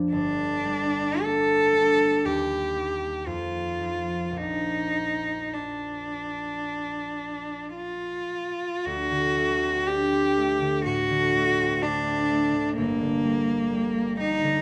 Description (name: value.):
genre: classical, romantic duo for cello and harp.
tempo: 51-64 BPM.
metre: 4/4.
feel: rubato.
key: unclear.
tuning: A4 = 440 Hz.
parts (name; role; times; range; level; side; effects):
concert harp; accompaniment; 0.0-14.6 s; G1 to Eb4; -32 LUFS; equal; none.
rich cello; melody; 0.1-14.6 s; Bb3 to A4; -27 LUFS; equal; none.
room: wet recital hall reverb, RT60 1.4 s.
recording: close, detailed microphones.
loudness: -26 LUFS.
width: mono.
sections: 0.0-8.9 A section; 8.9-14.6 B section.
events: none.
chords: 0.1 Gm; 2.2 Eb; 3.3 Ebsus2/F; 4.4 Bb; 8.9 D7; 12.8 Gm.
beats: | 0.11 1.21 2.24 3.26 | 4.37 5.53 6.65 7.76 | 8.85 9.87 10.85 11.82 | 12.77 13.72.